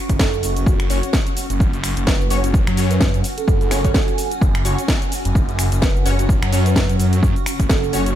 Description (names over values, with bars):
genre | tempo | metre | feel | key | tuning
bass house | 128 BPM | 4/4 | swing 57% on 16ths | F# minor | A4 = 438 Hz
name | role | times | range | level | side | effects
granular cloud pad | texture | 0.0-8.2 s | C#4 to C#6 | -29 LUFS | right 1 dB | built-in reverb, sidechain pumping
phased detuned saw bass | bass | 0.1-8.1 s | F#1 to F#2 | -19 LUFS | equal | phaser, tube saturation, sidechain pumping
electronic kick drum | drums | 0.1-7.8 s | none | -18 LUFS | equal | overdrive, studio reverb
garage drum kit | drums | 0.1-8.1 s | cabasa, finger snaps, hi-hat, snare drum | -24 LUFS | equal | studio reverb
vibraphone with soft mallets | melody | 0.2-8.1 s | F#4 to B4 | -27 LUFS | right 10 dB | none
orchestra-hit-like synth stab | stabs | 0.9-8.0 s | C#4 to C#5 | -26 LUFS | left 3 dB | built-in reverb, phaser, sidechain pumping, digital delay
room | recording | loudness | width
digital ambience | none | -15 LUFS | side -11 dB against mid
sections
0.0-8.2 A section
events
none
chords
0.0 F#5